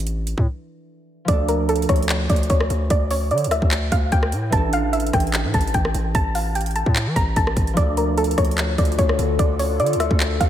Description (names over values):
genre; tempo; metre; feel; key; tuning
hip hop, trap; 148 BPM; 4/4; half-time; D harmonic minor; A4 = 440 Hz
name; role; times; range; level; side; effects
concert harp; accompaniment; 0.0-10.5 s; E3 to A4; -29 LUFS; right 2 dB; low-pass filter
distorted 808-style bass; bass; 0.0-10.5 s; A1 to E3; -23 LUFS; equal; distortion
trap drum kit; drums; 0.0-10.5 s; handclaps, hi-hat, kick drum, rim click; -22 LUFS; equal; none
soft round pluck; melody; 1.3-10.5 s; A4 to Bb5; -23 LUFS; equal; chorus, low-pass filter, tape echo
warbly tape-like pad; sustained chords; 8.6-10.5 s; D3 to A4; -26 LUFS; left 7 dB; chorus, built-in reverb, phaser
room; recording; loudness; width
moderate lush hall reverb, RT60 1.9 s, digital ambience; dreamy mix soaked in reverb; -18 LUFS; side -11 dB against mid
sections
0.0-1.3 A section; 1.3-10.5 B section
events
break 0.5-1.3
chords
0.0 Asus4; 1.3 Dm; 4.5 Asus4; 7.8 Dm